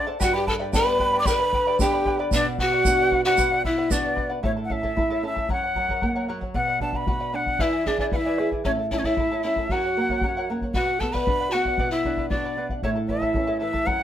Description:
andean folk, Andean ensemble; 114 BPM; 2/4; straight; B minor; A4 = 440 Hz
breathy quena; melody; 0.0-14.0 s; C#5 to D6; -25 LUFS; equal
breathy pan flute; second line; 0.0-4.3, 7.6-12.7 s; C#4 to D5; -26 LUFS; equal; slapback echo
charango; accompaniment; 0.0-14.0 s; E4 to B5; -30 LUFS; left 1 dB
nylon-string guitar; accompaniment; 0.2-14.0 s; F#2 to B4; -29 LUFS; right 2 dB
bombo; percussion; 0.2-14.0 s; -29 LUFS; left 1 dB
tube shaker; percussion; 0.2-4.0 s; -32 LUFS; right 8 dB
moderate small room reverb, RT60 0.5 s; -21 LUFS; side -10 dB against mid
0.0-4.4 A section; 4.4-12.8 B section; 12.8-14.0 B section
0.2 G; 2.3 Bm; 4.4 A; 5.5 F#; 6.5 Bm; 7.6 E7; 8.7 A; 9.7 F#; 10.7 Bm; 12.8 A

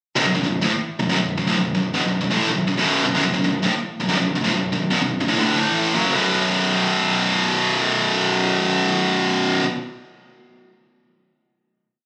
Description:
metal; 161 BPM; 4/4; straight; B minor; A4 = 441 Hz
high-gain distorted guitar; solo; 0.2-9.7 s; B1 to A3; -20 LUFS; equal; distortion
light reverb, digital ambience; recorded on a phone in the room, studio reverb, compression; -20 LUFS; mono
0.2-6.1 riff; 6.1-9.1 final chord
0.2 Bm; 5.6 A5; 5.9 F#5; 6.1 B5

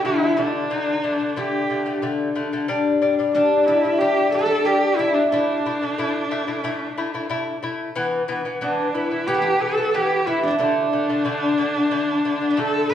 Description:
mongolian traditional, Mongolian folk; 91 BPM; 4/4; straight; G gong mode; A4 = 439 Hz
clear horsehead fiddle; melody; 0.0-12.9 s; D4 to B4; -22 LUFS; right 1 dB
guzheng; second line; 0.0-12.9 s; D4 to B4; -26 LUFS; right 3 dB
lute; arpeggios; 0.0-12.9 s; D3 to E4; -22 LUFS; left 3 dB; slapback echo
wet recital hall reverb, RT60 1.4 s; small room ambience; -19 LUFS; side -10 dB against mid
0.0-2.7 A section; 2.7-12.9 B section
0.0 D5; 2.7 G5; 5.3 A5; 7.9 E5; 10.6 D5

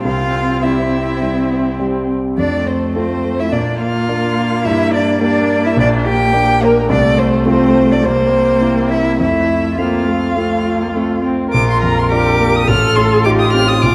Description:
quick classical-period movement for piano quartet; 105 BPM; 4/4; straight; F major; A4 = 440 Hz
warm violin; melody; 0.0-13.9 s; Bb4 to F6; -20 LUFS; equal
rich cello; second line; 0.0-13.9 s; Bb3 to G4; -24 LUFS; equal
warm concert grand piano; accompaniment; 0.0-13.9 s; A1 to G4; -18 LUFS; equal
warm viola; accompaniment; 0.0-13.9 s; A3 to Bb4; -21 LUFS; equal
moderate scoring stage reverb, RT60 1.8 s; dark, warm production; -15 LUFS; mono
0.0-11.5 A section; 11.5-13.9 B section
0.1 C; 2.4 F; 3.5 Bb; 4.7 Gm; 5.8 Gm/Bb; 6.9 F/C; 8.0 C7; 9.2 F; 11.5 Bb; 12.7 F7/A

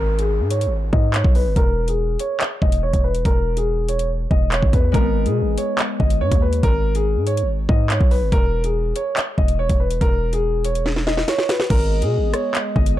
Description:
hip hop, drill; 142 BPM; 4/4; half-time; G# harmonic minor; A4 = 440 Hz
dark concert grand piano; melody; 0.0-13.0 s; G#4 to D#5; -23 LUFS; equal; low-pass filter, tape echo
hard-hitting 808-style bass; bass; 0.0-13.0 s; E1 to B2; -20 LUFS; equal
downlifter; sound effects; 0.0-1.6 s; -38 LUFS; equal
drill drum kit; drums; 0.2-13.0 s; crash cymbal, handclaps, hi-hat, kick drum, rim click, snare drum; -19 LUFS; equal
Celtic harp; accompaniment; 4.9-8.4 s; G#3 to D#4; -27 LUFS; left 4 dB; low-pass filter
glass harmonica; sustained chords; 11.7-13.0 s; G#3 to D#5; -27 LUFS; right 3 dB; stereo widening
little or no reverb; dark, warm production; -17 LUFS; side -14 dB against mid
0.0-11.7 A section; 11.7-13.0 B section
filter sweep 0.0-4.9; drum fill 10.9-11.7
0.0 G#m; 1.6 N.C.; 4.9 G#m; 8.3 N.C.; 11.7 G#m

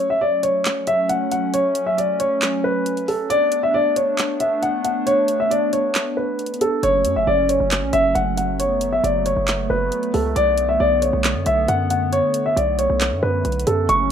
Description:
hip hop, trap; 136 BPM; 4/4; half-time; A4 = 440 Hz
dark concert grand piano; melody; 0.0-14.1 s; A4 to C#6; -18 LUFS; left 1 dB; low-pass filter, plate reverb
hollow soft pad; sustained chords; 0.0-14.1 s; D3 to D4; -25 LUFS; right 1 dB; chorus, plate reverb
trap drum kit; drums; 0.4-14.0 s; handclaps, hi-hat; -25 LUFS; right 1 dB; overdrive
hard-hitting 808-style bass; bass; 6.8-14.1 s; F#1 to F#2; -24 LUFS; right 1 dB
wet studio reverb, RT60 0.5 s; rough home demo mix; -17 LUFS; side -8 dB against mid
0.0-13.9 A section
break 0.0-6.8
0.0 F#m; 3.3 Bm7; 6.8 F#m; 10.4 Bm7

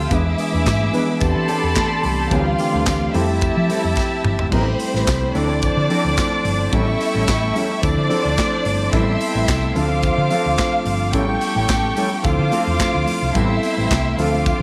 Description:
disco; 109 BPM; 4/4; straight; A minor; A4 = 438 Hz
rich studio string section; second line; 0.0-14.6 s; C4 to A5; -26 LUFS; equal
mellow electric guitar; accompaniment; 0.0-14.5 s; F3 to B4; -29 LUFS; equal; harmonic tremolo
tine electric piano; accompaniment; 0.0-14.6 s; D3 to B4; -26 LUFS; equal
clear studio string section; sustained chords; 0.0-14.6 s; G4 to E6; -28 LUFS; equal
hollow-body short-scale fingered electric bass; bass; 0.0-14.6 s; G1 to F3; -24 LUFS; equal
modern studio drum kit; drums; 0.1-14.6 s; crash cymbal, handclaps, hi-hat, kick drum, snare drum, toms; -27 LUFS; equal
tambourine; percussion; 0.1-14.6 s; -43 LUFS; equal
congas; percussion; 0.5-14.6 s; -34 LUFS; equal
moderate echo chamber reverb, RT60 2.6 s; -19 LUFS; mono
0.0-4.5 A section; 4.5-14.6 B section
drum fill 4.0-4.5
0.1 E7; 1.2 Am11/E; 2.3 D7sus4; 3.1 Fmaj9; 4.5 Am9; 5.3 Dm7; 6.7 A7; 7.8 Dm7; 8.9 Am9; 9.8 Dm7; 11.1 A7; 12.2 Dm7; 13.4 Am9

